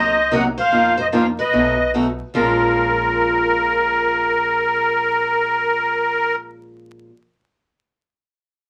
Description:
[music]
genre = acoustic string swing (jazz manouche)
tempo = 148 BPM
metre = 4/4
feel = swing 62% on 8ths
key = Bb minor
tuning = A4 = 440 Hz
[part]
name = musette accordion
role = melody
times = 0.0-6.4 s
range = Bb4 to Gb5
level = -19 LUFS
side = equal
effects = none
[part]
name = picked steel-string acoustic guitar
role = second line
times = 0.0-7.0 s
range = F4 to Eb5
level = -28 LUFS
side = equal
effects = none
[part]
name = picked steel-string acoustic guitar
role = accompaniment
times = 0.0-7.1 s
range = Bb2 to Bb4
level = -25 LUFS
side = equal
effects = none
[part]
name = upright bass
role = bass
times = 0.0-7.0 s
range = Bb1 to F2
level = -36 LUFS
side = equal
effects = none
[sound]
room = wet small room ambience, RT60 0.5 s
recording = vinyl crackle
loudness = -18 LUFS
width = mono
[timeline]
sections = 0.0-2.3 A section; 2.3-5.6 B section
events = none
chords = 0.0 Cm7b5; 0.7 F7sus4; 1.5 B7; 2.3 Bbm7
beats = 0.32 | 0.72 1.13 1.53 1.94 | 2.35 2.75 3.16 3.56 | 3.97 4.37 4.78 5.18

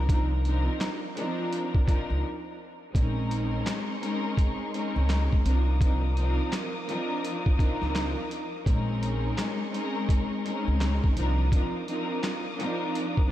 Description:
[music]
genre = hip hop, boom-bap hip-hop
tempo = 84 BPM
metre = 4/4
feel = swing 62% on 16ths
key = unclear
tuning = A4 = 440 Hz
[part]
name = warm studio string section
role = accompaniment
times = 0.0-13.3 s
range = F3 to Bb4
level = -30 LUFS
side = left 1 dB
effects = high-pass filter, low-pass filter
[part]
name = upright bass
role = bass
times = 0.0-11.5 s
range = Bb1 to Db2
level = -26 LUFS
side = equal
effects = none
[part]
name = boom bap sampler-style drum kit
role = drums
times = 0.1-13.3 s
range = handclaps, hi-hat, kick drum, snare drum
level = -27 LUFS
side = equal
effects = none
[part]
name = warm studio string section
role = sustained chords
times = 3.0-13.3 s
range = Ab4 to Eb6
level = -39 LUFS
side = right 1 dB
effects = high-pass filter, low-pass filter
[sound]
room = light reverb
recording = none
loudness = -25 LUFS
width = side -13 dB against mid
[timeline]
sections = 0.0-2.9 A section; 2.9-13.3 A section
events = break 2.2-2.9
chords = 0.0 Cm11; 2.9 Bbm11; 5.4 Cm11; 8.7 Bbm11; 11.2 Cm11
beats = | 0.09 0.81 1.52 2.23 | 2.95 3.66 4.38 5.09 | 5.81 6.52 7.23 7.95 | 8.66 9.38 10.09 10.81 | 11.52 12.23 12.95

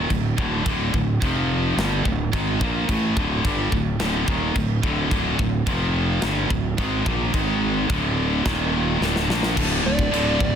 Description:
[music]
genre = heavy metal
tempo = 108 BPM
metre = 4/4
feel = straight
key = unclear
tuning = A4 = 440 Hz
[part]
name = scooped high-gain guitar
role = riff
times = 0.0-10.6 s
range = D2 to Bb3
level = -26 LUFS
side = right 9 dB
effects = distortion
[part]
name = tight distorted guitar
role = riff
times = 0.0-10.6 s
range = D2 to Bb3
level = -26 LUFS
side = left 13 dB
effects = distortion
[part]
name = fuzz fingered electric bass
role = bass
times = 0.0-10.6 s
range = D1 to Bb1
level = -25 LUFS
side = equal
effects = overdrive
[part]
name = tight metal drum kit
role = drums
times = 0.1-10.5 s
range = china cymbal, crash cymbal, kick drum, snare drum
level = -26 LUFS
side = equal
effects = none
[part]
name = heavy high-gain guitar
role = riff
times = 9.6-10.6 s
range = D2 to F4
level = -29 LUFS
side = right 1 dB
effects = distortion
[part]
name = high-gain lead guitar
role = melody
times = 9.9-10.6 s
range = D5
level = -24 LUFS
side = left 1 dB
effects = distortion
[sound]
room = small room ambience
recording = dense, heavily limited modern master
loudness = -19 LUFS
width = side -8 dB against mid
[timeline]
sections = 0.0-9.6 A section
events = drum fill 9.0-9.6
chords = 0.0 D5; 1.2 F5; 1.8 Dm; 5.7 F5; 6.2 Dm; 7.3 G#5; 7.9 D5; 8.5 Eb5; 9.0 Dm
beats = 0.10 | 0.66 1.22 1.77 2.33 | 2.89 3.44 4.00 4.56 | 5.12 5.67 6.23 6.79 | 7.34 7.90 8.45 9.01 | 9.56 10.12

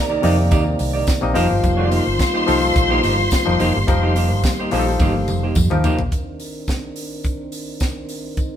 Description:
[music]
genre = disco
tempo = 107 BPM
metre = 4/4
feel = straight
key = C dorian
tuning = A4 = 440 Hz
[part]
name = clear studio string section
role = second line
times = 0.0-5.5 s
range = Bb4 to C6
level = -24 LUFS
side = left 2 dB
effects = none
[part]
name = mellow clav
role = accompaniment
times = 0.0-6.0 s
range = C3 to Eb5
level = -23 LUFS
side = left 4 dB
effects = none
[part]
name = mellow French horn section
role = sustained chords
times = 0.0-8.6 s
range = C3 to D5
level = -25 LUFS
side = equal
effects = none
[part]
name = semi-hollow electric guitar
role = accompaniment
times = 0.1-6.0 s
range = Bb3 to D5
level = -24 LUFS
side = right 4 dB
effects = none
[part]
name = hollow-body short-scale fingered electric bass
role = bass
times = 0.2-6.1 s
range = F1 to F2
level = -20 LUFS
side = right 1 dB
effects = none
[part]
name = tight funk drum kit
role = drums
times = 0.2-8.5 s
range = hi-hat, kick drum, snare drum, toms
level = -22 LUFS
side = equal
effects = none
[part]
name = tambourine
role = percussion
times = 0.2-8.5 s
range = none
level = -36 LUFS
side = left 3 dB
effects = none
[sound]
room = moderate stone room reverb, RT60 1.2 s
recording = band playing live in one room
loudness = -16 LUFS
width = side -10 dB against mid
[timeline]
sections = 0.0-6.1 A section; 6.1-8.6 B section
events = drum fill 5.0-6.1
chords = 0.0 Cm9; 1.4 F9sus4; 6.1 Cm9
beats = 0.52 1.08 | 1.64 2.20 2.76 3.32 | 3.88 4.44 5.00 5.56 | 6.12 6.69 7.25 7.81 | 8.38

